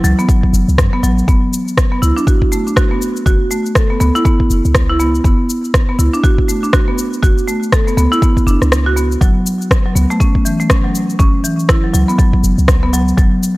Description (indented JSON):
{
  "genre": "afro house",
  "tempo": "121 BPM",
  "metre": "4/4",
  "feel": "swing 59% on 16ths",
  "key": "unclear",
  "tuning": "A4 = 441 Hz",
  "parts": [
    { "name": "marimba with medium hard mallets", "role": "arpeggios", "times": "0.0-13.3 s", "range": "E3 to A4", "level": "-16 LUFS", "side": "equal", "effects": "sidechain pumping, analog delay" },
    { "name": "warm 808-style bass", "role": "bass", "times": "0.0-13.3 s", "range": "F#1 to F#2", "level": "-14 LUFS", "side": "equal", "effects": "tube saturation, sidechain pumping" },
    { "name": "electronic cabasa and rim click", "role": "drums", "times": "0.0-13.5 s", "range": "none", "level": "-20 LUFS", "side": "equal", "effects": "none" },
    { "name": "electronic kick drum", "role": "drums", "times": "0.3-13.3 s", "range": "none", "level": "-13 LUFS", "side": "equal", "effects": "none" }
  ],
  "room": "little or no reverb",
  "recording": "dry, gritty hardware recording",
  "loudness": "-11 LUFS",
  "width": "side -20 dB against mid",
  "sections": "0.0-13.6 A section",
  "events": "kick drops out 8.7-9.2",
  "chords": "0.0 F#m; 1.3 Bmadd9/F#; 9.2 F#5",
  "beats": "0.29 0.78 | 1.28 1.77 2.27 2.77 | 3.26 3.76 4.25 4.75 | 5.25 5.74 6.24 6.73 | 7.23 7.72 8.22 8.72 | 9.21 9.71 10.21 10.70 | 11.20 11.69 12.19 12.68 | 13.18"
}